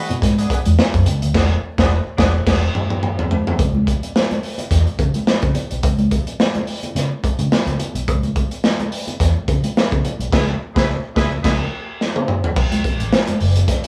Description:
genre	funk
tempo	107 BPM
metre	4/4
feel	swing 56% on 16ths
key	unclear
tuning	A4 = 441 Hz
part	clear horn section	second line	0.0-2.6, 10.3-11.6 s	B3 to B4	-28 LUFS	equal	none
part	vintage muted fingered electric bass	bass	0.1-13.6 s	E1 to C#3	-21 LUFS	equal	none
part	crunchy breakbeat drum kit	drums	0.1-13.9 s	crash cymbal, hi-hat, kick drum, snare drum, toms	-20 LUFS	equal	none
part	congas	percussion	0.1-13.7 s	none	-28 LUFS	equal	none
room	moderate studio ambience, RT60 0.5 s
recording	band playing live in one room, small room ambience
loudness	-18 LUFS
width	mono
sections	0.0-3.6 A section; 3.6-12.6 B section; 12.6-13.9 C section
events	drum fill 1.3-3.6, 12.0-12.6; band accent 1.3-3.6, 10.3-12.6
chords	0.0 E7; 3.6 N.C.; 12.6 B5

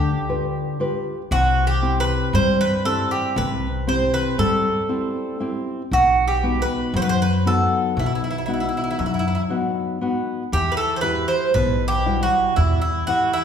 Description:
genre	greek folk, Greek bouzouki band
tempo	117 BPM (eighths)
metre	9/8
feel	straight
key	E harmonic minor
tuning	A4 = 439 Hz
part	Greek bouzouki	melody	0.0-13.4 s	E4 to C5	-21 LUFS	right 2 dB	none
part	nylon-string guitar	accompaniment	0.0-13.4 s	B2 to F#5	-23 LUFS	left 3 dB	none
part	upright bass	bass	0.0-13.3 s	B1 to G2	-24 LUFS	equal	none
room	wet recital hall reverb, RT60 1.5 s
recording	recorded in a church or concert hall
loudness	-18 LUFS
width	side -8 dB against mid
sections	0.0-10.5 A section; 10.5-13.4 B section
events	none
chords	0.0 G7; 1.3 C; 5.9 B; 10.5 Emadd9

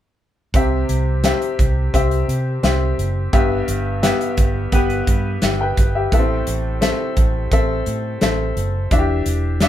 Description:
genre	piano-driven pop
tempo	86 BPM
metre	4/4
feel	straight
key	unclear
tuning	A4 = 439 Hz
part	vintage muted fingered electric bass	bass	0.5-9.7 s	E1 to C3	-21 LUFS	right 1 dB	none
part	modern studio drum kit	drums	0.5-9.7 s	hi-hat, kick drum, snare drum	-19 LUFS	right 1 dB	none
part	clear upright piano	accompaniment	0.6-9.7 s	G2 to G5	-20 LUFS	left 2 dB	none
room	moderate studio reverb, RT60 0.6 s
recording	band playing live in one room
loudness	-16 LUFS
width	side -12 dB against mid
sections	0.5-9.7 A section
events	none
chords	0.5 C; 3.3 G6; 6.1 Am; 8.9 Em7

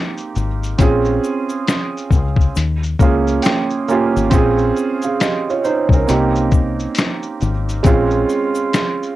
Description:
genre	lo-fi hip hop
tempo	68 BPM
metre	4/4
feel	swing 62% on 16ths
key	Bb dorian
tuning	A4 = 437 Hz
part	felt-muted upright piano	accompaniment	0.0-9.2 s	Ab3 to Ab5	-17 LUFS	right 4 dB	cassette tape
part	lo-fi sampler-style drum kit	drums	0.2-9.2 s	finger snaps, hi-hat, kick drum, shaker, snare drum	-17 LUFS	left 2 dB	cassette tape
part	deep dub fingered electric bass	bass	0.4-8.2 s	Ab1 to Eb2	-19 LUFS	left 2 dB	tube saturation
part	tube shaker	percussion	0.4-9.0 s	none	-39 LUFS	left 14 dB	none
room	light reverb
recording	home recording on cassette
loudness	-14 LUFS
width	side -15 dB against mid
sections	0.0-9.2 A section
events	none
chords	0.0 Cm7; 0.8 Bbm9; 2.6 Eb7sus4; 4.3 Bbm9; 6.1 Cm7; 7.8 Bbm9

